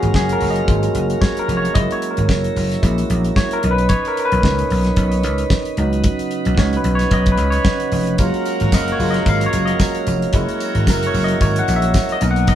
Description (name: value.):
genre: disco.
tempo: 112 BPM.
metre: 4/4.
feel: swing 56% on 16ths.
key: unclear.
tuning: A4 = 440 Hz.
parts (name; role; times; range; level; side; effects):
barky tine electric piano; accompaniment; 0.0-12.6 s; A#2 to F#5; -21 LUFS; left 1 dB; none.
tonewheel organ; sustained chords; 0.0-12.6 s; B2 to E#5; -24 LUFS; right 5 dB; slow rotary speaker.
vintage slap bass; bass; 0.0-12.5 s; E#1 to C#2; -18 LUFS; equal; none.
damped 70s drum kit; drums; 0.0-12.6 s; hi-hat, kick drum, snare drum; -19 LUFS; equal; none.
warm horn section; stabs; 8.2-12.6 s; A#3 to D#5; -26 LUFS; right 1 dB; none.
tambourine; percussion; 8.2-12.6 s; none; -36 LUFS; right 6 dB; none.
room: moderate studio ambience, RT60 0.5 s.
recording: band playing live in one room, cassette tape.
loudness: -15 LUFS.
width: side -11 dB against mid.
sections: 0.0-12.6 A section.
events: tine electric piano solo 0.0-12.6.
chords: 0.0 F#maj7; 1.8 F#7; 3.6 Bmaj9; 5.8 C#9sus4; 8.2 F#maj7; 10.3 F#7.